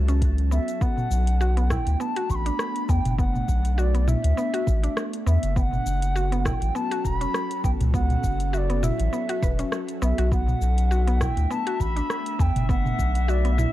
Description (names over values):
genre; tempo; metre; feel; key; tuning
organic downtempo; 101 BPM; 4/4; swing 55% on 16ths; B minor; A4 = 438 Hz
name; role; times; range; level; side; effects
ethereal airy pad; sustained chords; 0.0-13.7 s; F#3 to A4; -34 LUFS; equal; ensemble chorus, built-in reverb, sidechain pumping
mallet-like synth pluck; arpeggios; 0.0-13.7 s; B3 to B4; -31 LUFS; equal; chorus, tape echo
round analog bass; bass; 0.0-13.7 s; E1 to E2; -22 LUFS; equal; sidechain pumping
drifting glass-harmonics texture; texture; 0.0-0.8, 10.9-13.7 s; E5 to A5; -37 LUFS; left 3 dB; chorus, built-in reverb
afro-pop drum kit; drums; 0.1-13.7 s; hi-hat, rim click, shaker, toms; -30 LUFS; equal; none
electronic kick drum; drums; 0.2-13.1 s; none; -26 LUFS; equal; none
reedy bansuri; melody; 0.5-13.7 s; D5 to C#6; -30 LUFS; right 1 dB; tape echo
room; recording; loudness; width
little or no reverb; dry, gritty hardware recording, cassette tape; -21 LUFS; side -14 dB against mid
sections
0.8-13.7 A section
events
none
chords
0.0 F#m7; 0.8 Bm7; 5.6 F#m7; 10.3 Bm7